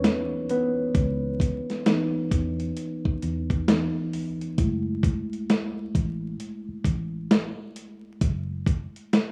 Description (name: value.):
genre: lo-fi hip hop.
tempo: 66 BPM.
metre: 4/4.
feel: swing 63% on 16ths.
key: F# dorian.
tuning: A4 = 440 Hz.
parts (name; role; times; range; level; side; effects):
mellow tine electric piano; accompaniment; 0.0-9.3 s; E3 to C#5; -31 LUFS; equal; cassette tape, low-pass filter.
vintage muted fingered electric bass; bass; 0.0-8.9 s; F#1 to E2; -32 LUFS; equal; none.
dusty soul sampler-style drum kit; drums; 0.0-9.3 s; hi-hat, kick drum, snare drum; -26 LUFS; equal; none.
room: little or no reverb.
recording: rough home demo mix, vinyl crackle.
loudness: -26 LUFS.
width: mono.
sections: 0.0-9.3 A section.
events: tine electric piano solo 0.0-9.3.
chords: 0.0 C#m7; 4.6 F#m7.